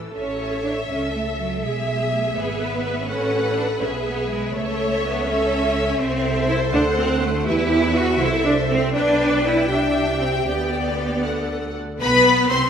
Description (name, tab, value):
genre	quick classical-period movement for string orchestra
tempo	82 BPM (dotted quarters)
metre	6/8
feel	straight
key	A major, G major from 6.0 s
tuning	A4 = 440 Hz
part	clear symphonic viola section	accompaniment	0.0-12.7 s	E3 to B4	-26 LUFS	equal	none
part	clear symphonic violin section	melody	0.1-12.7 s	C#5 to C6	-26 LUFS	left 3 dB	none
part	rich studio violin section	second line	0.2-12.6 s	B4 to E5	-25 LUFS	left 2 dB	none
part	clear studio cello section	bass	0.2-12.7 s	F#3 to F#4	-23 LUFS	right 1 dB	none
part	clear symphonic double bass section	bass	0.2-12.6 s	G#1 to E2	-26 LUFS	right 3 dB	none
room	wet concert hall reverb, RT60 1.9 s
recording	none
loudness	-18 LUFS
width	side -8 dB against mid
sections	0.1-12.0 A section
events	none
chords	0.1 A; 1.6 E/B; 3.1 A; 4.5 A/C#; 6.0 Am/C; 6.7 D7; 7.5 Em; 8.2 Am/C; 8.9 G/B; 9.7 C; 10.5 G/D; 11.2 D; 12.0 N.C.